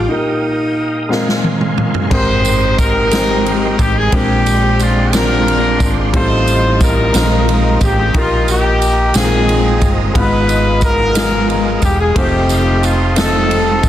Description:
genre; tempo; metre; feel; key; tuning
slow gospel; 60 BPM (dotted quarters); 6/8; straight; unclear; A4 = 441 Hz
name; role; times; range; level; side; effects
mellow alto saxophone; melody; 0.0-1.4 s; Eb4 to F4; -20 LUFS; equal; none
warm upright piano; accompaniment; 0.0-13.9 s; Ab2 to Eb5; -18 LUFS; left 2 dB; none
tonewheel organ; sustained chords; 0.0-13.9 s; Ab3 to Eb6; -24 LUFS; right 3 dB; fast rotary speaker, chorus vibrato
hollow-body short-scale fingered electric bass; bass; 0.0-13.9 s; Fb1 to Bb1; -17 LUFS; equal; none
swinging big-band drum kit; drums; 1.1-13.9 s; crash cymbal, kick drum, ride cymbal, snare drum, toms; -17 LUFS; equal; none
clear horn section; melody; 2.1-13.9 s; Bb3 to C5; -16 LUFS; left 1 dB; none
tambourine; percussion; 2.4-13.9 s; none; -27 LUFS; right 7 dB; none
room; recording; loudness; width
light reverb, small room reverb; dense, heavily limited modern master; -11 LUFS; side -12 dB against mid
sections
0.0-2.1 A section; 2.1-13.9 B section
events
drum fill 1.1-2.1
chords
0.1 Eb/Bb; 1.1 Bb9sus4; 2.1 Abmaj9; 4.1 Bb13; 6.1 F9/A; 7.1 Bb9sus4; 8.1 Eb/Bb; 9.2 Bb9sus4; 10.2 Abm6; 12.2 F7

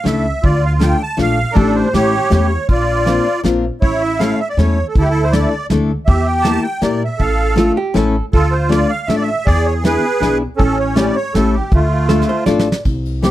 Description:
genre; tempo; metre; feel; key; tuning
musette waltz; 160 BPM; 3/4; straight; D minor; A4 = 437 Hz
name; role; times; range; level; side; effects
musette accordion; melody; 0.0-13.3 s; A3 to A5; -17 LUFS; right 2 dB; none
picked steel-string acoustic guitar; accompaniment; 0.0-13.3 s; A3 to Bb4; -17 LUFS; left 4 dB; none
upright bass; bass; 0.0-13.3 s; A1 to Bb2; -18 LUFS; equal; none
soft brush drum kit; drums; 0.1-13.3 s; hi-hat, kick drum, ride cymbal, snare drum; -16 LUFS; equal; none
hollow-body jazz guitar; second line; 7.6-8.2, 12.1-12.8 s; F4 to D5; -20 LUFS; right 4 dB; none
room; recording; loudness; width
studio reverb; dry, close 1970s-style studio recording; -13 LUFS; side -14 dB against mid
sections
0.0-12.9 A section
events
drum fill 12.1-12.9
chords
0.4 Dm; 1.6 A7sus4; 1.9 A7; 2.7 Bbadd9; 3.8 A; 4.9 Dsus2; 6.1 Edim; 7.2 Dm/A; 8.0 A; 8.3 Dm; 9.5 E7; 10.6 A7; 11.7 Dm

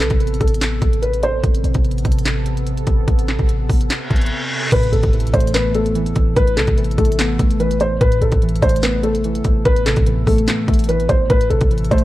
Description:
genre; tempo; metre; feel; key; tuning
hip hop, trap; 146 BPM; 4/4; half-time; A minor; A4 = 440 Hz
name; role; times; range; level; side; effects
felt-muted upright piano; melody; 0.0-1.4, 4.7-12.0 s; A4 to C5; -20 LUFS; left 1 dB; low-pass filter, ping-pong delay
deep dark ambient pad; sustained chords; 0.0-4.7, 11.3-12.0 s; C3 to A4; -26 LUFS; right 1 dB; chorus, built-in reverb
clean 808-style bass; bass; 0.0-12.0 s; A1 to B1; -20 LUFS; equal; none
trap drum kit; drums; 0.0-12.0 s; crash cymbal, handclaps, hi-hat, kick drum, snare drum; -18 LUFS; equal; none
reverse cymbal and impact; sound effects; 4.0-6.4 s; none; -26 LUFS; equal; none
warbly lo-fi synth keys; accompaniment; 4.7-12.0 s; A2 to B3; -21 LUFS; equal; chorus, low-pass filter
room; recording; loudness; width
digital ambience; worn, warbling old tape, cassette tape, warbly pitch drift, lossy compression artefacts; -14 LUFS; side -16 dB against mid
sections
0.0-4.7 A section; 4.7-12.0 B section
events
break 0.0-4.7; reverse cymbal 4.0-4.7; impact 4.7-6.4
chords
0.0 Amadd9

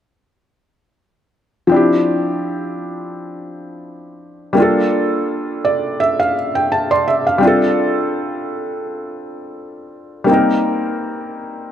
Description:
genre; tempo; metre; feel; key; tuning
R&B; 84 BPM; 4/4; swing 54% on 16ths; D minor; A4 = 440 Hz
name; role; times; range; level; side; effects
felt-muted upright piano; accompaniment; 1.7-11.7 s; F3 to C6; -16 LUFS; equal; none
room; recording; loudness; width
light reverb, small room ambience; none; -15 LUFS; side -10 dB against mid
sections
1.7-11.7 A section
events
felt piano fill 5.3-7.4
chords
1.7 Dm11; 4.6 Gm9; 7.4 F69; 10.3 Eb6

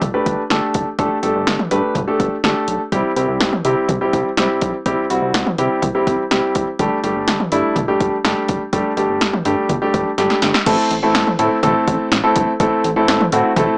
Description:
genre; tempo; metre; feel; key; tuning
synth-pop; 124 BPM; 4/4; straight; A dorian; A4 = 439 Hz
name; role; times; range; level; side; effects
warm baby grand piano; accompaniment; 0.0-13.8 s; G3 to B4; -16 LUFS; equal; none
chorused synth bass; bass; 0.0-13.7 s; F#1 to C3; -23 LUFS; equal; none
punchy analog drum machine; drums; 0.0-13.7 s; crash cymbal, hi-hat, kick drum, snare drum, toms; -19 LUFS; equal; none
room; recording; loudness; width
light reverb; dry, gritty hardware recording, transformer saturation, small speaker sound; -14 LUFS; side -34 dB against mid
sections
0.0-10.7 A section; 10.7-13.8 B section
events
drum fill 10.2-10.7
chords
0.0 Gsus2; 2.9 C; 6.8 Gsus2; 10.7 Am

